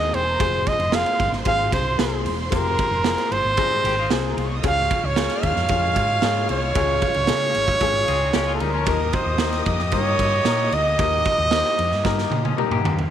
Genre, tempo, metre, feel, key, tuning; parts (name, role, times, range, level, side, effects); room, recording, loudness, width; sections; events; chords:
uptempo 1960s-style soul; 113 BPM; 4/4; straight; Eb mixolydian; A4 = 440 Hz
breathy trumpet; melody; 0.0-12.6 s; A4 to F5; -22 LUFS; right 2 dB
warm studio violin section; second line; 0.0-12.8 s; Eb4 to F6; -32 LUFS; left 1 dB
warm baby grand piano; accompaniment; 0.0-12.9 s; Ab3 to C5; -28 LUFS; left 14 dB
hollow-body short-scale fingered electric bass; bass; 0.0-13.1 s; Fb1 to Eb3; -26 LUFS; left 1 dB
raw garage drum kit; drums; 0.1-13.1 s; hi-hat, kick drum, ride cymbal, snare drum, toms; -25 LUFS; right 3 dB
semi-hollow electric guitar; riff; 3.6-4.6, 8.1-9.0, 12.5-13.1 s; F3 to Ab4; -30 LUFS; left 15 dB; wide subtle chorus
mellow horn section; second line; 4.6-12.8 s; Ab3 to Eb5; -30 LUFS; left 3 dB
studio ambience; 1960s-style stereo; -18 LUFS; side -10 dB against mid
0.0-13.1 A section
drum fill 12.1-13.1
0.0 Ab; 4.6 Db; 8.9 Eb